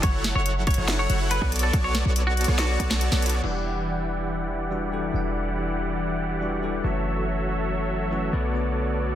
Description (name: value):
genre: future bass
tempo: 141 BPM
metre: 4/4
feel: half-time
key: E dorian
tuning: A4 = 440 Hz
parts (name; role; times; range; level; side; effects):
- semi-hollow electric guitar; melody; 0.0-3.4 s; F#4 to C#5; -29 LUFS; left 1 dB; wide subtle chorus, sidechain pumping, digital delay
- supersaw chords; riff; 0.0-9.2 s; E3 to F#5; -28 LUFS; right 1 dB; cassette tape, sidechain pumping, low-pass filter, tape echo
- warm 808-style bass; bass; 0.0-9.2 s; E1 to B1; -27 LUFS; equal; sidechain pumping
- electronic kick drum; drums; 0.0-2.9 s; none; -24 LUFS; equal; overdrive
- trap drum kit; drums; 0.0-3.5 s; crash cymbal, hi-hat, snare drum; -28 LUFS; equal; overdrive, low-pass filter on hats, low-pass filter on snare, low-pass filter on cymbals
- bell-like tine electric piano; accompaniment; 3.4-9.2 s; D3 to F#5; -30 LUFS; moving between left 7 dB and left 1 dB; auto-pan, sidechain pumping, tape echo
room: light reverb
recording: dense, heavily limited modern master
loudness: -22 LUFS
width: side -11 dB against mid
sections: 0.0-3.4 A section; 3.4-9.2 B section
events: drop 0.0-3.4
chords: 0.0 F#m7; 1.5 Bm7; 3.4 Em9; 6.8 F#m7; 8.3 Bm7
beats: | 0.03 0.46 0.88 1.31 | 1.74 2.16 2.59 3.01 | 3.44 3.86 4.29 4.71 | 5.14 5.56 5.99 6.42 | 6.84 7.27 7.69 8.12 | 8.54 8.97